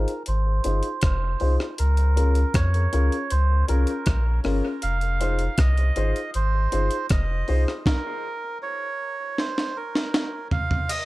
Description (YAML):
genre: dub reggae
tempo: 79 BPM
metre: 4/4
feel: straight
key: F minor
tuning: A4 = 441 Hz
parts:
  - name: melodica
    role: melody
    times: 0.0-11.1 s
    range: Bb4 to F5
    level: -29 LUFS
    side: right 4 dB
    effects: low-pass filter, dub echo
  - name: dark upright piano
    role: stabs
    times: 0.0-7.7 s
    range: Db4 to C5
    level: -30 LUFS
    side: left 3 dB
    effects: low-pass filter, dub echo
  - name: warm sub bass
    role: bass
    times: 0.0-7.7 s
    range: F1 to F2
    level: -21 LUFS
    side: equal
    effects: none
  - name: breakbeat sampler-style drum kit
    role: drums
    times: 0.1-11.1 s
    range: crash cymbal, hi-hat, kick drum, rim click, snare drum, toms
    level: -24 LUFS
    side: equal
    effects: none
room: light reverb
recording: none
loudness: -21 LUFS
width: side -19 dB against mid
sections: 0.0-10.9 A section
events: filter sweep 0.0-10.9; stop 7.9-10.9; drum fill 9.4-10.9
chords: 0.0 Fm7; 1.8 Db6; 4.8 Fm7; 7.9 N.C.